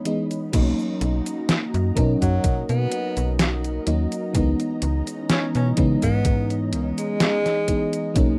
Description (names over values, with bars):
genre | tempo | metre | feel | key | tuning
vaporwave | 63 BPM | 4/4 | straight | B major | A4 = 439 Hz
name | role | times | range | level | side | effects
FM electric piano with soft pad layer | accompaniment | 0.0-8.4 s | E3 to A#4 | -27 LUFS | equal | analog chorus, tape echo
soft string machine | sustained chords | 0.0-8.4 s | E3 to B5 | -37 LUFS | equal | ensemble chorus, vintage 12-bit sampler grit
detuned 8-bit digital drum machine | drums | 0.1-8.4 s | cabasa, crash cymbal, hi-hat, snare drum | -27 LUFS | equal | studio reverb
slap-like FM bass | bass | 0.5-8.4 s | B1 to C#3 | -25 LUFS | equal | none
electronic kick drum | drums | 0.5-8.4 s | none | -26 LUFS | equal | studio reverb
clear tenor saxophone | melody | 2.2-8.3 s | F#3 to C#4 | -29 LUFS | equal | tape echo
room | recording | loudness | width
moderate small room ambience, RT60 0.5 s | rough home demo mix | -22 LUFS | mono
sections
0.5-8.4 A section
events
none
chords
0.0 C#m9; 0.5 Bmaj7; 4.3 C#m9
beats
| 0.54 1.49 2.44 3.40 | 4.35 5.30 6.25 7.20 | 8.16